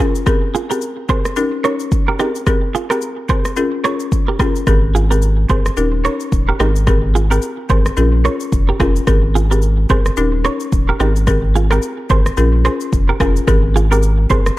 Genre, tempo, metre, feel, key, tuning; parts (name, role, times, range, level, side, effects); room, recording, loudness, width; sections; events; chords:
afrobeats; 109 BPM; 4/4; swing 58% on 16ths; Ab major; A4 = 439 Hz
folk marimba with medium hard mallets; accompaniment; 0.0-14.6 s; C4 to Bb4; -20 LUFS; left 3 dB
clean electric guitar; riff; 0.0-14.4 s; Eb4 to Db5; -22 LUFS; right 6 dB; spring reverb, tape echo
afro-pop drum kit; drums; 0.2-14.6 s; kick drum, rim click, shaker; -17 LUFS; equal
warm sub bass; bass; 4.7-14.5 s; Eb1 to Bb1; -15 LUFS; equal
digital ambience; dark, warm production; -13 LUFS; side -17 dB against mid
0.0-13.5 A section; 13.5-14.6 B section
0.3 Abmaj9; 1.4 Eb7; 2.2 Abmaj9; 3.6 Bbm7; 4.7 Abmaj9; 5.8 Eb7; 6.6 Abmaj9; 8.0 Bbm7; 9.1 Abmaj9; 10.2 Eb7; 11.0 Abmaj9; 12.4 Bbm7; 13.5 Abmaj9